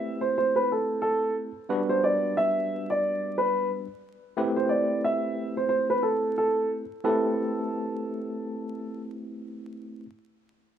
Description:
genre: hip hop, boom-bap hip-hop.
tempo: 90 BPM.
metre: 4/4.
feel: swing 55% on 16ths.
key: A dorian.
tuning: A4 = 440 Hz.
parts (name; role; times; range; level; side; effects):
dark upright piano; melody; 0.0-9.0 s; A4 to E5; -26 LUFS; right 1 dB; high-pass filter, low-pass filter, slapback echo.
tine electric piano; accompaniment; 0.0-10.1 s; G3 to B4; -30 LUFS; equal; overdrive, fast stereo tremolo, high-pass filter, low-pass filter.
room: light reverb, small room ambience.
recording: rough home demo mix, vinyl crackle.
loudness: -24 LUFS.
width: side -9 dB against mid.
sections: 0.0-7.0 A section; 7.0-9.7 B section.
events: none.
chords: 0.0 Am9; 1.7 Gmaj7; 4.4 Am9.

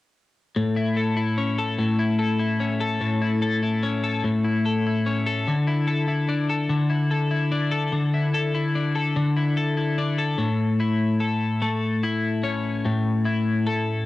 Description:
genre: pop.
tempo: 49 BPM (dotted quarters).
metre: 6/8.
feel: straight.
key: unclear.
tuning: A4 = 440 Hz.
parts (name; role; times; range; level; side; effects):
twelve-string electric guitar; solo; 0.6-14.1 s; A2 to A4; -21 LUFS; left 2 dB; wide subtle chorus, cassette tape.
room: wet studio ambience, RT60 0.5 s.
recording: home recording on cassette.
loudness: -21 LUFS.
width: side -16 dB against mid.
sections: 0.6-10.4 A section; 10.4-14.1 B section.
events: none.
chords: 0.6 A; 5.5 Dsus2; 10.4 A.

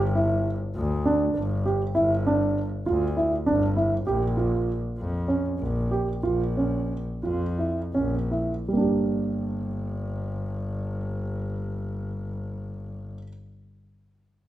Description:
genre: contemporary instrumental, chamber music in an uneven meter.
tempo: 155-200 BPM (eighths).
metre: 7/8.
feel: straight.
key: G dorian.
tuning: A4 = 441 Hz.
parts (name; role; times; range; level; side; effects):
clear double bass; bass; 0.0-13.1 s; G1 to F2; -28 LUFS; left 1 dB; none.
dark concert grand piano; arpeggios; 0.2-13.3 s; G3 to G4; -25 LUFS; right 2 dB; none.
room: moderate recital hall reverb, RT60 1.5 s.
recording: none.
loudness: -24 LUFS.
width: side -13 dB against mid.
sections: 0.0-8.7 A section; 8.7-14.1 B section.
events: slowing down 4.1-8.7.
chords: 0.0 G5; 4.1 Bbm; 8.7 Gm.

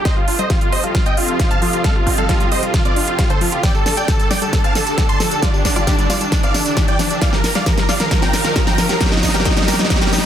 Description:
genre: uplifting trance.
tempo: 134 BPM.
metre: 4/4.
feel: straight.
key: unclear.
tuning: A4 = 439 Hz.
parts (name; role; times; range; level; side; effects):
dense compressed supersaw; melody; 0.0-10.2 s; D4 to C6; -20 LUFS; right 1 dB; sidechain pumping, low-pass filter, dub echo.
lush unison pad; sustained chords; 0.0-10.3 s; D3 to A5; -26 LUFS; equal; chorus, phaser, sidechain pumping.
wide unison pluck; arpeggios; 0.0-10.2 s; D3 to G4; -27 LUFS; left 4 dB; sidechain pumping.
riser and swell; sound effects; 1.8-10.3 s; none; -27 LUFS; equal; none.
big-room dance drum kit; drums; 0.1-10.3 s; hi-hat, snare drum, tambourine; -21 LUFS; equal; none.
electronic kick drum; drums; 0.1-10.0 s; none; -18 LUFS; equal; none.
room: little or no reverb.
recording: dense, heavily limited modern master.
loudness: -14 LUFS.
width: side -10 dB against mid.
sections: 0.0-10.3 A section.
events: build-up 0.0-10.3; drum fill 0.0-10.3; filter sweep on synth pluck 0.0-10.3; riser 1.8-10.3; swell 9.9-10.3.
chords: 0.1 F7; 3.6 Dsus4; 7.2 Ebadd9.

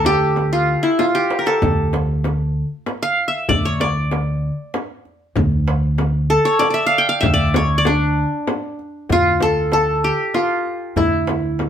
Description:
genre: Arabic maqam ensemble.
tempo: 96 BPM.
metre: 3/4.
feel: straight.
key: D maqam nahawand.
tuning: A4 = 442 Hz.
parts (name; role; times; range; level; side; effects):
qanun; melody; 0.0-11.7 s; D4 to G5; -17 LUFS; equal; none.
upright bass; bass; 0.0-11.7 s; D2; -20 LUFS; equal; none.
frame drum; percussion; 0.0-11.7 s; none; -24 LUFS; left 3 dB; none.
darbuka; percussion; 0.1-11.7 s; none; -26 LUFS; right 1 dB; none.
room: moderate studio reverb, RT60 0.7 s.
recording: band playing live in one room.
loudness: -16 LUFS.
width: side -9 dB against mid.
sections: 0.0-9.1 A section; 9.1-11.7 B section.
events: drum fill 1.0-1.6.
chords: none.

